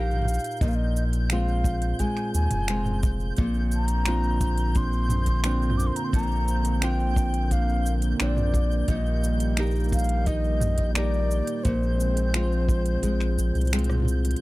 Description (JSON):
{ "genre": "folktronica", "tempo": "87 BPM", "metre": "4/4", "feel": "straight", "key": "unclear", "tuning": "A4 = 440 Hz", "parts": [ { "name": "mellow baroque flute", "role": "melody", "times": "0.0-13.7 s", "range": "C5 to D6", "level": "-32 LUFS", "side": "left 1 dB", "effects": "tape echo" }, { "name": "nylon-string guitar", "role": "arpeggios", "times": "0.0-14.4 s", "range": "Bb2 to Bb4", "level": "-30 LUFS", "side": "equal", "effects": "none" }, { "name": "round analog bass", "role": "bass", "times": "0.0-14.4 s", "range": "F1 to Eb2", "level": "-25 LUFS", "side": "equal", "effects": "none" }, { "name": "twinkling granular texture", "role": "texture", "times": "0.0-14.4 s", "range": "G6", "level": "-40 LUFS", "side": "right 1 dB", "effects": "built-in reverb" }, { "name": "organic electronic drum kit", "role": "drums", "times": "0.1-14.4 s", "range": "finger snaps, hi-hat, rim click, shaker, toms", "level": "-31 LUFS", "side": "right 1 dB", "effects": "overdrive" }, { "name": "kick drum", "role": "drums", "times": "0.6-13.2 s", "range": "none", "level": "-26 LUFS", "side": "equal", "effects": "none" }, { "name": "warm analog pad", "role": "sustained chords", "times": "3.4-14.4 s", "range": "D3 to C4", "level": "-32 LUFS", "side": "right 2 dB", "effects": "chorus" } ], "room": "little or no reverb", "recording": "dry, close 1970s-style studio recording", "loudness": "-22 LUFS", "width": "side -19 dB against mid", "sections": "0.0-14.4 A section", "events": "kick drops out 13.7-14.4; band accent 13.7-14.1; drum fill 13.9-14.4", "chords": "0.0 Eb/Bb; 0.6 Ab6/Bb; 3.4 Bbadd9; 8.9 Eb/Bb; 11.7 Ab6/Bb" }